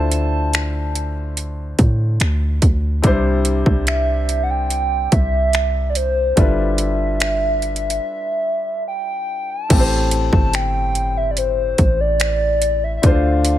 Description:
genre	contemporary R&B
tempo	72 BPM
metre	4/4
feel	straight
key	A minor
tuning	A4 = 440 Hz
part	hollow clarinet-like synth lead	melody	0.0-13.6 s	C5 to A5	-21 LUFS	equal	chorus, phaser
part	warm baby grand piano	accompaniment	0.0-13.6 s	A2 to C5	-24 LUFS	left 3 dB	none
part	warm 808-style bass	bass	0.0-13.6 s	G1 to A2	-20 LUFS	equal	none
part	trap drum kit	drums	0.1-13.6 s	crash cymbal, finger snaps, hi-hat, kick drum	-17 LUFS	equal	none
room	little or no reverb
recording	none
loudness	-16 LUFS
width	side -12 dB against mid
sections	0.0-9.7 A section; 9.7-13.6 B section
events	break 8.0-9.7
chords	0.0 Dm7; 3.0 C; 6.4 G13; 9.7 Am7; 13.0 Dm7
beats	0.54 1.37 2.20 | 3.04 3.87 4.70 5.54 | 6.37 7.20 8.04 8.87 | 9.70 10.54 11.37 12.20 | 13.04

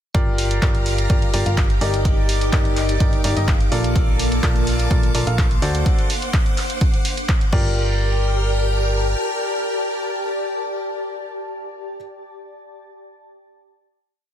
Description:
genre	piano house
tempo	126 BPM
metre	4/4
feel	straight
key	G minor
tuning	A4 = 440 Hz
part	string machine, violins	sustained chords	0.1-12.0 s	Bb3 to F6	-27 LUFS	equal	ensemble chorus, sidechain pumping
part	clear upright piano	riff	0.1-12.0 s	Eb4 to F5	-26 LUFS	left 1 dB	sidechain pumping, dub echo
part	solid FM bass	bass	0.1-9.2 s	G1 to D2	-22 LUFS	equal	sidechain pumping
part	electronic kick drum	drums	0.1-7.6 s	none	-19 LUFS	equal	none
part	punchy analog drum machine	drums	0.1-7.6 s	crash cymbal, handclaps, hi-hat	-27 LUFS	right 1 dB	none
part	granular cloud pad	texture	1.0-12.3 s	Bb3 to D6	-28 LUFS	left 1 dB	built-in reverb, sidechain pumping
room	little or no reverb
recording	dense, heavily limited modern master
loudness	-17 LUFS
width	side -10 dB against mid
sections	0.1-7.8 drop; 7.8-11.6 final note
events	drop 0.1-7.8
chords	0.1 Gm7; 3.7 Bbmaj7; 5.6 D7; 7.5 Gm7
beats	| 0.15 0.62 1.10 1.57 | 2.05 2.53 3.00 3.48 | 3.96 4.43 4.91 5.38 | 5.86 6.34 6.81 7.29 | 7.76 8.24 8.72 9.19 | 9.67 10.15 10.62 11.10

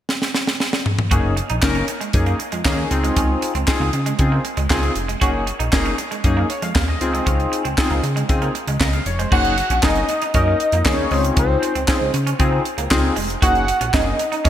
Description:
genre	early-eighties boogie funk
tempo	117 BPM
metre	4/4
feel	straight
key	unclear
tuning	A4 = 441 Hz
part	tight funk drum kit	drums	0.1-14.5 s	crash cymbal, handclaps, hi-hat, kick drum, snare drum, toms	-20 LUFS	equal	gated reverb
part	chorused polysynth	accompaniment	1.1-14.5 s	Bb3 to F5	-22 LUFS	left 2 dB	none
part	electric guitar at the edge of break-up	riff	1.1-14.5 s	Ab3 to Gb4	-28 LUFS	right 6 dB	lush chorus
part	chorused synth bass	bass	1.1-14.5 s	F1 to Db3	-22 LUFS	equal	none
part	fat analog lead	melody	9.3-14.5 s	C5 to Gb5	-21 LUFS	equal	chorus, phaser, ping-pong delay
room	moderate lush hall reverb, RT60 2.5 s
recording	bright 1980s-style digital production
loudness	-16 LUFS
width	side -11 dB against mid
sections	0.0-1.1 A section; 1.1-9.3 B section; 9.3-14.5 C section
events	drum fill 0.1-1.1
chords	0.0 N.C.; 1.1 Gb6; 2.9 Dbmaj7; 5.2 Gb6; 7.0 Dbmaj7; 9.3 Gb6; 11.1 Dbmaj7; 13.4 Gb6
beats	0.09 0.60 | 1.11 1.63 2.14 2.65 | 3.17 3.68 4.19 4.70 | 5.22 5.73 6.24 6.75 | 7.27 7.78 8.29 8.81 | 9.32 9.83 10.34 10.86 | 11.37 11.88 12.39 12.91 | 13.42 13.93 14.45

